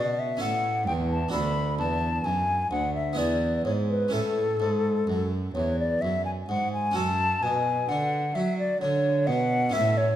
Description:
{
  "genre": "classical, baroque-style sonata movement with continuo",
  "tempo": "65 BPM",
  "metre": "3/4",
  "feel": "straight",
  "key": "A major, F# minor from 7.0 s",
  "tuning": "A4 = 440 Hz",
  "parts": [
    { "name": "mellow hollow silver concert flute", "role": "melody", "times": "0.0-10.2 s", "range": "A4 to B5", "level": "-26 LUFS", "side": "left 2 dB", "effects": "none" },
    { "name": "harpsichord", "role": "accompaniment", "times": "0.0-10.2 s", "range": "D2 to A4", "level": "-30 LUFS", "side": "right 2 dB", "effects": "none" },
    { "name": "warm cello", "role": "bass", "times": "0.0-10.2 s", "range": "D2 to F#3", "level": "-29 LUFS", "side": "right 2 dB", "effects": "none" }
  ],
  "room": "wet recital hall reverb, RT60 1.4 s",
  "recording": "none",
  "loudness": "-24 LUFS",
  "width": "side -11 dB against mid",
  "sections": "0.0-7.0 A section; 7.0-10.2 A section",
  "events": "none",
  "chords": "0.0 A; 1.3 D; 3.2 E7; 4.1 A; 7.0 F#m"
}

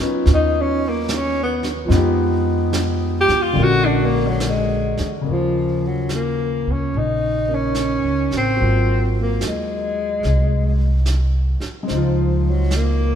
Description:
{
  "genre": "jazz ballad",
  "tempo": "72 BPM",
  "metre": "4/4",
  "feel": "swing 67% on 8ths",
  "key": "Eb minor",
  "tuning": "A4 = 440 Hz",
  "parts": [
    { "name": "warm baby grand piano", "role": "accompaniment", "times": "0.0-13.2 s", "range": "Db3 to C5", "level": "-23 LUFS", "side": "left 2 dB", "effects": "none" },
    { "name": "upright bass", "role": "bass", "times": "0.0-13.2 s", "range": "Ab1 to F2", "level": "-20 LUFS", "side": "equal", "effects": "none" },
    { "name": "breathy tenor saxophone", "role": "melody", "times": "0.3-13.2 s", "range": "F3 to G4", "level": "-21 LUFS", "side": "equal", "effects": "none" },
    { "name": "vintage brush drum kit", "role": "drums", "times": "0.3-13.2 s", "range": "brushed snare drum, hi-hat, snare drum", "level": "-30 LUFS", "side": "right 4 dB", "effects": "none" }
  ],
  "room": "moderate plate reverb, RT60 2.4 s",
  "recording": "heard from further back in the room",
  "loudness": "-17 LUFS",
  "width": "side -8 dB against mid",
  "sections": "0.0-5.2 A section; 5.2-13.2 B section",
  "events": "tenor saxophone solo 0.0-5.2",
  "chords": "0.0 Abm11 (rootless); 1.9 Fm7b5; 3.6 Bb7alt; 5.2 Ebsus2; 8.6 Ab13; 11.9 Dbmaj9"
}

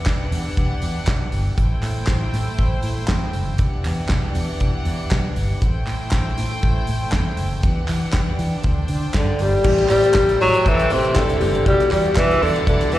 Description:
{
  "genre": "disco",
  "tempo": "119 BPM",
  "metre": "4/4",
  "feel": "swing 56% on 16ths",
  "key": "A dorian",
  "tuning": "A4 = 441 Hz",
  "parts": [
    { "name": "rich studio string section", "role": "sustained chords", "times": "0.0-13.0 s", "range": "D3 to G5", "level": "-28 LUFS", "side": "equal", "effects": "none" },
    { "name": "fingered electric bass", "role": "bass", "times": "0.1-13.0 s", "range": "E1 to E3", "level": "-22 LUFS", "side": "equal", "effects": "none" },
    { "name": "damped 70s drum kit", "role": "drums", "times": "0.1-13.0 s", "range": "crash cymbal, handclaps, hi-hat, kick drum, snare drum", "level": "-23 LUFS", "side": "equal", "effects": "none" },
    { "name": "group handclap", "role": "percussion", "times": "0.1-12.3 s", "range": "none", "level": "-34 LUFS", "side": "right 3 dB", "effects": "slapback echo" },
    { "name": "breathy tenor saxophone", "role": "melody", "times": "9.2-13.0 s", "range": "C3 to G3", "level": "-17 LUFS", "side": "equal", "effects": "slapback echo" },
    { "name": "clear concert grand piano", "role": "accompaniment", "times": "9.6-13.0 s", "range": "E3 to G4", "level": "-24 LUFS", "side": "left 7 dB", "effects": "slapback echo" }
  ],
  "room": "small room ambience",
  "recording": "live gig heard through the venue's PA, recital hall reverb, lossy compression artefacts",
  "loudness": "-17 LUFS",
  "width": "side -14 dB against mid",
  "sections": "0.0-9.7 A section; 9.7-13.0 B section",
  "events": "none",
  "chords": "0.0 Em9; 1.6 Am7; 3.6 Em9; 5.6 Am7; 7.6 Em9; 8.6 D7sus4; 9.7 Am7; 11.7 Em9"
}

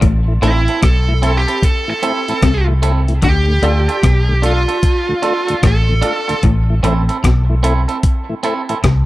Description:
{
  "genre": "roots reggae",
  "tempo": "75 BPM",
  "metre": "4/4",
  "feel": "swing 64% on 16ths",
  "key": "A minor",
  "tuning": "A4 = 443 Hz",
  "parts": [
    { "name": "twangy electric guitar", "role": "riff", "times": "0.0-9.1 s", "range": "A2 to D3", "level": "-21 LUFS", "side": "left 4 dB", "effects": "ensemble chorus" },
    { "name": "vintage muted fingered electric bass", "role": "bass", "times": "0.0-9.1 s", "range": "A1 to D2", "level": "-14 LUFS", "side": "equal", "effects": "none" },
    { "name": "dusty soul sampler-style drum kit", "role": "drums", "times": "0.0-9.1 s", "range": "hi-hat, kick drum, rim click", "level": "-16 LUFS", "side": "equal", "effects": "none" },
    { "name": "tonewheel organ", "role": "accompaniment", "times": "0.3-8.7 s", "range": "D2 to F4", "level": "-24 LUFS", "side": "left 2 dB", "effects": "chorus vibrato, stopped rotary speaker" },
    { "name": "dark smooth lead guitar", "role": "melody", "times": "0.4-6.4 s", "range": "E4 to A4", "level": "-19 LUFS", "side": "right 1 dB", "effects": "overdrive, dub echo" },
    { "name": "clean electric guitar", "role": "accompaniment", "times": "0.4-8.8 s", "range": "C4 to A4", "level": "-22 LUFS", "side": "right 4 dB", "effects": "dub echo" }
  ],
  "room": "light reverb",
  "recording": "none",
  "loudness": "-12 LUFS",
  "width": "side -17 dB against mid",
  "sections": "0.0-9.1 A section",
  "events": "lead electric guitar solo 0.0-9.1",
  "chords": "0.0 Am; 3.2 Dm; 6.4 Am"
}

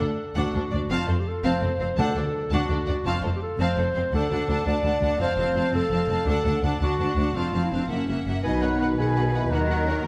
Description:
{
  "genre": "cinematic",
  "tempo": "112 BPM (dotted quarters)",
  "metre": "6/8",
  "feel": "straight",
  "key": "unclear",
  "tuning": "A4 = 440 Hz",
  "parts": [
    { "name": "rich studio violin section", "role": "melody", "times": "0.0-10.0 s", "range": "A4 to A5", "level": "-39 LUFS", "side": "equal", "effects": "none" },
    { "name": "rich symphonic violin section", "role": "second line", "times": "0.0-10.1 s", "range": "A4 to F#5", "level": "-36 LUFS", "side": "equal", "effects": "none" },
    { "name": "warm clarinet", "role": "second line", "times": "0.0-10.1 s", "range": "C#4 to D#5", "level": "-30 LUFS", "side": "equal", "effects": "none" },
    { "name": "bright symphonic viola section", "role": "accompaniment", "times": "0.0-10.0 s", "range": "A#3 to B4", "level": "-34 LUFS", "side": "equal", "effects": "none" },
    { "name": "rich symphonic cello section", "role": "bass", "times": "0.0-10.0 s", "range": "D2 to D#3", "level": "-31 LUFS", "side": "equal", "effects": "none" },
    { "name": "warm studio double bass section", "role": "bass", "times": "0.0-10.0 s", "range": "F1 to D#2", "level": "-31 LUFS", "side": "equal", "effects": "none" },
    { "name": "timpani", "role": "percussion", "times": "2.0-2.5 s", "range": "D3", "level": "-35 LUFS", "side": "equal", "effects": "none" },
    { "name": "warm oboe", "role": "second line", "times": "8.4-10.1 s", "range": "F#5 to G#5", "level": "-34 LUFS", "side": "equal", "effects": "none" },
    { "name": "dark French horn section", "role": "sustained chords", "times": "8.4-10.1 s", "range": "C#4 to G#4", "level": "-31 LUFS", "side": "equal", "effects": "none" },
    { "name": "bright small flute group", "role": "second line", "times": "8.5-10.0 s", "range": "A#5 to B5", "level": "-38 LUFS", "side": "equal", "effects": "none" },
    { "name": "mellow trombone section", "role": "sustained chords", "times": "8.5-10.1 s", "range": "D#3 to F#3", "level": "-35 LUFS", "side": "equal", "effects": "none" }
  ],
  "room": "wet recital hall reverb, RT60 1.6 s",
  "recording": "none",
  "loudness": "-24 LUFS",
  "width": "mono",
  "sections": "0.0-8.4 A section; 8.4-10.1 B section",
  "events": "none",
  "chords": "0.0 D; 0.9 F; 2.0 D; 3.1 F; 4.1 D; 5.2 F; 6.3 D; 7.3 F; 7.9 F#7; 8.4 B; 9.5 D#m"
}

